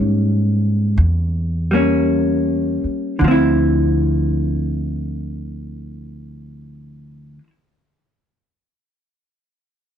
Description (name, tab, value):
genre	jazz ballad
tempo	51-59 BPM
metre	4/4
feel	swing 68% on 8ths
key	D minor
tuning	A4 = 440 Hz
part	vintage hollow-body jazz guitar	accompaniment	0.0-7.5 s	D3 to E4	-19 LUFS	left 1 dB	none
part	upright bass	bass	0.0-7.4 s	D2 to G#2	-19 LUFS	equal	none
room	light reverb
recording	dark, warm production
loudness	-16 LUFS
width	side -9 dB against mid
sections	0.0-3.2 A section; 3.2-7.9 B section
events	slowing down 0.0-3.2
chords	0.0 A7b9 (rootless); 3.2 Dm9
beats	0.99 2.08 | 3.23 4.41 5.58 6.75